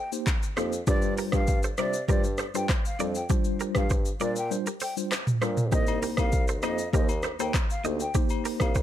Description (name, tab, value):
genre	afrobeats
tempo	99 BPM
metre	4/4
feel	straight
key	C dorian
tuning	A4 = 440 Hz
part	breathy mellow concert flute	melody	0.0-8.7 s	D5 to G5	-35 LUFS	left 1 dB	none
part	direct-recorded clean electric guitar	riff	0.0-8.8 s	D4 to Eb5	-35 LUFS	right 6 dB	tape echo
part	mellow tine electric piano	accompaniment	0.1-8.7 s	G3 to C5	-32 LUFS	left 2 dB	medium stereo tremolo
part	afro-pop drum kit	drums	0.1-8.8 s	handclaps, hi-hat, kick drum, rim click, shaker, toms	-26 LUFS	equal	overdrive
part	dark bassoon	bass	0.6-8.8 s	C2 to C3	-31 LUFS	equal	none
part	agogo bells	percussion	5.9-8.7 s	none	-38 LUFS	left 8 dB	none
room	little or no reverb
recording	none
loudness	-24 LUFS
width	side -12 dB against mid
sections	0.0-8.8 A section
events	kick muted 4.5-5.7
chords	0.0 Cm7; 0.9 G7sus4; 5.7 Cm7